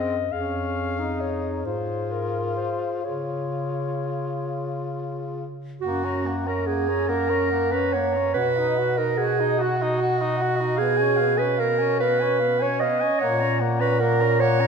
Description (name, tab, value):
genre	classical, lyrical piece for single-reed quartet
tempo	42-51 BPM (dotted quarters)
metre	6/8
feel	rubato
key	Db major, F# major from 5.8 s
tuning	A4 = 439 Hz
part	warm clarinet	melody	0.0-14.7 s	Bb4 to A#5	-30 LUFS	left 8 dB	none
part	warm clarinet	second line	0.0-14.7 s	F#4 to D#5	-24 LUFS	right 2 dB	none
part	warm tenor saxophone	accompaniment	0.0-14.7 s	A#3 to F#4	-30 LUFS	left 3 dB	none
part	mellow bass clarinet	bass	0.0-14.7 s	F2 to Db3	-28 LUFS	right 2 dB	none
room	wet concert hall reverb, RT60 1.8 s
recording	minimal, uncompressed stereo recording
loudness	-21 LUFS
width	side -6 dB against mid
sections	0.0-5.8 A section; 5.8-14.7 B section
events	none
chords	0.3 Db/F; 1.7 Ab69; 3.1 Db; 5.8 F#; 8.4 B; 10.8 C#7/B; 13.2 F#/A#